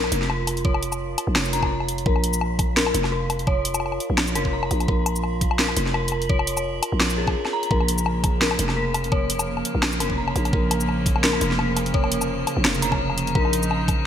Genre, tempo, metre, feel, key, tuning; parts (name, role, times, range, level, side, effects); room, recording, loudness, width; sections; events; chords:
half-time drum and bass; 170 BPM; 4/4; swing 55% on 16ths, half-time; Bb minor; A4 = 440 Hz
dark detuned synth bell; arpeggios; 0.0-14.1 s; Ab4 to Bb5; -27 LUFS; left 3 dB; chorus, phaser, ping-pong delay
growling 808-style bass; bass; 0.0-14.1 s; F1 to Bb1; -26 LUFS; equal
drum and bass drum kit; drums; 0.0-14.0 s; hi-hat, shaker, snare drum, woodblock; -24 LUFS; left 1 dB; overdrive, gated reverb
metallic inharmonic drone; texture; 0.0-14.1 s; F4 to Bb4; -34 LUFS; right 2 dB; chorus, built-in reverb, phaser
electronic kick drum; drums; 0.6-14.0 s; -23 LUFS; equal; overdrive
rich chamber string section; sustained chords; 7.7-14.1 s; Db3 to Eb4; -28 LUFS; right 3 dB; stereo widening, sidechain pumping
moderate lush hall reverb, RT60 2.0 s; bright 1980s-style digital production; -20 LUFS; side -9 dB against mid
0.0-14.1 A section
break 7.4-7.7
0.0 Bbm